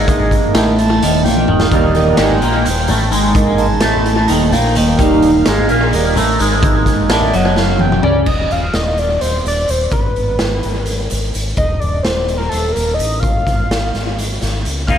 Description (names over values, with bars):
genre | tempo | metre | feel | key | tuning
psychedelic rock | 256 BPM (eighths) | 7/8 | straight | unclear | A4 = 439 Hz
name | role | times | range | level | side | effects
hand-pumped harmonium | sustained chords | 0.0-8.0 s | G3 to Bb5 | -19 LUFS | right 5 dB | none
clean electric guitar | riff | 0.0-8.3, 14.9-15.0 s | Eb2 to Eb4 | -14 LUFS | equal | phaser, double-tracked left and right, tape echo
fingered electric bass with an envelope filter | bass | 0.0-15.0 s | Eb1 to Db2 | -19 LUFS | equal | none
raw garage drum kit | drums | 0.1-15.0 s | crash cymbal, hi-hat, kick drum, snare drum, toms | -18 LUFS | equal | tape echo
congas | percussion | 0.1-8.1 s | none | -29 LUFS | left 3 dB | none
fat analog lead | melody | 8.0-15.0 s | A4 to F5 | -19 LUFS | left 1 dB | tape echo
room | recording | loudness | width
light reverb | echo-heavy mix | -12 LUFS | side -9 dB against mid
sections
0.0-8.3 A section; 8.3-15.0 B section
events
harmonium solo 0.0-8.3; drum fill 1.4-1.7, 7.6-8.3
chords
0.0 Eb; 8.3 Cmadd9/Eb; 9.9 Abm; 11.6 Cm13/Eb; 13.2 Db/Ab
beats
| 0.08 0.31 0.55 0.78 1.01 1.25 1.48 | 1.72 1.95 2.18 2.42 2.65 2.88 3.12 | 3.35 3.59 3.82 4.05 4.29 4.52 4.75 | 4.99 5.22 5.46 5.69 5.92 6.16 6.39 | 6.63 6.86 7.10 7.33 7.57 7.80 8.04 | 8.27 8.51 8.74 8.97 9.21 9.45 9.68 | 9.92 10.15 10.39 10.63 10.86 11.10 11.34 | 11.57 11.81 12.04 12.28 12.52 12.75 12.99 | 13.23 13.46 13.70 13.94 14.17 14.41 14.65 | 14.88